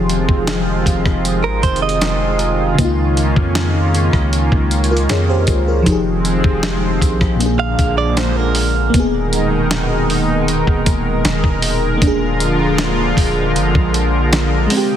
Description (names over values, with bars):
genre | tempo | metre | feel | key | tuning
contemporary R&B | 78 BPM | 4/4 | straight | unclear | A4 = 440 Hz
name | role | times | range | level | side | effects
FM electric piano with soft pad layer | accompaniment | 0.0-15.0 s | Bb2 to Db5 | -20 LUFS | left 1 dB | chorus, tremolo
chorused pulse-width pad | sustained chords | 0.0-15.0 s | Cb3 to Eb5 | -19 LUFS | right 1 dB | sidechain pumping
long sustained 808-style bass | bass | 0.0-14.7 s | Eb1 to F2 | -19 LUFS | equal | none
dusty soul sampler-style drum kit | drums | 0.1-14.9 s | hi-hat, kick drum, rim click, snare drum | -18 LUFS | equal | none
direct-recorded clean electric guitar | arpeggios | 1.4-2.7, 7.6-8.9 s | Bb4 to F5 | -21 LUFS | right 6 dB | digital delay
room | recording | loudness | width
light reverb | heavily compressed radio sound, multiband compression | -13 LUFS | side -10 dB against mid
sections
0.0-8.9 A section; 8.9-15.0 B section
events
none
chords
0.0 Fm9; 2.8 Db69; 5.9 Fm9; 7.4 Bb7; 8.9 Abmadd9/Eb; 12.0 Bb7/Eb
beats
0.48 1.25 2.02 | 2.79 3.56 4.33 5.09 | 5.86 6.63 7.40 8.17 | 8.94 9.71 10.48 11.25 | 12.02 12.79 13.56 14.32